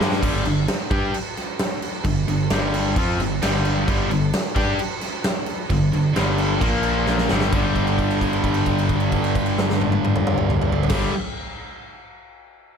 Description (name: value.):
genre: hard rock.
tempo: 131 BPM.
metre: 4/4.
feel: straight.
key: G minor.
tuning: A4 = 440 Hz.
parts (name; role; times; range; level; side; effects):
cranked stack guitar; riff; 0.0-11.1 s; G2 to G4; -25 LUFS; left 10 dB; overdrive.
distorted electric guitar; riff; 0.0-0.2, 3.9-11.1 s; G2 to G4; -27 LUFS; equal; overdrive.
high-gain distorted guitar; riff; 0.0-11.1 s; G2 to G4; -25 LUFS; right 9 dB; distortion.
modern bright picked electric bass; bass; 0.0-11.1 s; G1 to G2; -25 LUFS; equal; none.
huge arena drum kit; drums; 0.0-11.0 s; crash cymbal, kick drum, snare drum, toms; -24 LUFS; right 1 dB; none.
room: light reverb.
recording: none.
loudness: -18 LUFS.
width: side -7 dB against mid.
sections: 0.2-7.5 A section; 7.5-11.2 B section.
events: drum fill 0.0, 7.1-7.5; held note 7.5-10.9.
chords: 0.2 G5; 6.6 Bb5; 7.3 G5.